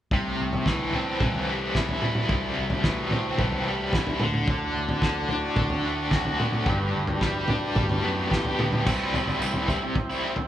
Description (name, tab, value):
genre	psychedelic rock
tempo	110 BPM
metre	4/4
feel	straight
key	unclear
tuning	A4 = 441 Hz
part	biting overdriven guitar	riff	0.1-10.4 s	G2 to G4	-26 LUFS	left 1 dB	tremolo
part	picked electric bass	bass	0.1-10.3 s	G1 to F#2	-33 LUFS	equal	none
part	tanpura	drone	0.1-10.5 s	D2 to D3	-35 LUFS	equal	none
part	cloth-damped thuddy drum kit	drums	0.1-10.5 s	crash cymbal, kick drum, snare drum, toms	-26 LUFS	equal	none
part	overdriven combo organ	sustained chords	4.5-10.5 s	D4 to G5	-33 LUFS	right 2 dB	none
part	tambourine	percussion	8.9-10.2 s	none	-44 LUFS	right 8 dB	none
room	moderate large studio reverb, RT60 0.9 s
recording	band playing live in one room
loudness	-23 LUFS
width	side -11 dB against mid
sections	0.1-8.9 A section; 8.9-10.5 B section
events	none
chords	0.1 C; 4.2 D; 6.7 G; 8.9 C